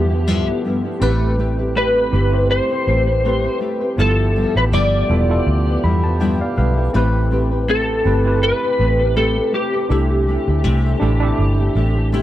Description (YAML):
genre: indie pop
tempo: 81 BPM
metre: 4/4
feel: swing 55% on 16ths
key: unclear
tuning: A4 = 440 Hz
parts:
  - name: electric slide guitar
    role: melody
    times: 0.0-12.1 s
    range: G4 to D5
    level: -20 LUFS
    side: equal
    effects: ensemble chorus, analog delay
  - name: nylon-string guitar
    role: accompaniment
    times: 0.0-12.2 s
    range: G2 to B4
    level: -22 LUFS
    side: left 3 dB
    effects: analog chorus, warbly pitch drift
  - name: tine electric piano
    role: accompaniment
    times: 0.0-12.2 s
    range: B3 to B5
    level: -24 LUFS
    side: right 2 dB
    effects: overdrive, fast stereo tremolo, cassette tape
  - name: dark French horn section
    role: sustained chords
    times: 0.0-12.2 s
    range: C3 to B4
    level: -29 LUFS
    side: equal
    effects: none
  - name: vintage muted fingered electric bass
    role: bass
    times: 0.0-12.2 s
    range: E1 to E2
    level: -18 LUFS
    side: equal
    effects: none
room: light reverb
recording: none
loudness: -15 LUFS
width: side -13 dB against mid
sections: 0.0-12.2 A section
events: tine electric piano fill 5.5-6.9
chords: 0.0 G13; 1.0 Am9; 4.0 G13; 6.9 Am9; 9.9 C6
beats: 0.27 | 1.01 1.75 2.50 3.24 | 3.98 4.72 5.46 6.20 | 6.94 7.68 8.42 9.16 | 9.90 10.64 11.38 12.12